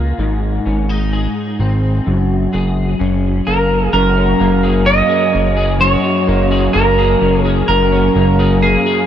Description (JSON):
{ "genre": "dream pop", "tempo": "64 BPM", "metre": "4/4", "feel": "straight", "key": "Gb major", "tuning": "A4 = 442 Hz", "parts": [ { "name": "electric guitar at the edge of break-up", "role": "arpeggios", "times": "0.0-9.1 s", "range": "Gb2 to Ab4", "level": "-16 LUFS", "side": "left 2 dB", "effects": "ensemble chorus, tape echo" }, { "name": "fat analog bass", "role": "bass", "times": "0.0-8.8 s", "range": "Gb1 to Db2", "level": "-16 LUFS", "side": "equal", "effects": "none" }, { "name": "clean electric guitar", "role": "melody", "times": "3.5-9.1 s", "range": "Ab4 to Eb5", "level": "-14 LUFS", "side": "right 2 dB", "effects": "wide subtle chorus, tape echo" } ], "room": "moderate huge ambient reverb, RT60 6.7 s", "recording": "none", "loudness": "-12 LUFS", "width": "side -10 dB against mid", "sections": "0.0-3.9 A section; 3.9-9.1 B section", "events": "none", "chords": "0.2 Ab; 2.1 Gbadd9" }